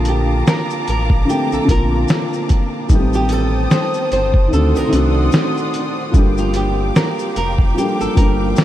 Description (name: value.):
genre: lo-fi hip hop.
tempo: 74 BPM.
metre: 4/4.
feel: swing 59% on 16ths.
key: G minor.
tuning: A4 = 440 Hz.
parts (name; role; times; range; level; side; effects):
flamenco guitar; melody; 0.0-8.6 s; F4 to C5; -23 LUFS; right 1 dB; lush chorus, analog delay.
felt-muted upright piano; accompaniment; 0.0-8.6 s; D3 to Bb4; -19 LUFS; left 1 dB; cassette tape.
dark studio string section; sustained chords; 0.0-8.6 s; G4 to Eb6; -26 LUFS; equal; none.
sub bass with octave; bass; 0.0-8.5 s; F1 to D2; -19 LUFS; equal; none.
lo-fi sampler-style drum kit; drums; 0.1-8.6 s; hi-hat, kick drum, shaker, snare drum; -16 LUFS; equal; none.
room: moderate huge ambient reverb, RT60 8.4 s.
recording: dreamy mix soaked in reverb, vinyl crackle.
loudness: -14 LUFS.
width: side -13 dB against mid.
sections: 0.0-8.6 A section.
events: none.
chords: 0.0 Bbmaj7; 2.9 Am7b5; 4.5 D7b9; 6.1 Gm7.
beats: 0.47 1.28 2.09 | 2.90 3.71 4.52 5.33 | 6.14 6.95 7.76 8.57.